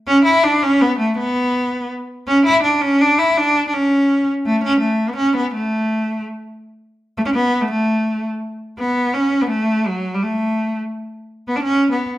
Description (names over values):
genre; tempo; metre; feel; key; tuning
medieval; 166 BPM; 3/4; straight; A major; A4 = 440 Hz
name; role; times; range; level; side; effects
clear cello; solo; 0.1-12.1 s; F#3 to E4; -15 LUFS; equal; none
room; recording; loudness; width
wet large studio reverb, RT60 0.9 s; band playing live in one room; -15 LUFS; side -14 dB against mid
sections
0.0-6.6 A section; 6.6-12.2 B section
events
none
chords
none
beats
| 0.08 0.45 0.81 | 1.18 1.54 1.91 | 2.27 2.63 3.00 | 3.36 3.73 4.09 | 4.45 4.81 5.18 | 5.54 5.90 6.26 | 6.62 6.99 7.35 | 7.71 8.07 8.43 | 8.79 9.15 9.51 | 9.87 10.23 10.59 | 10.94 11.30 11.66 | 12.02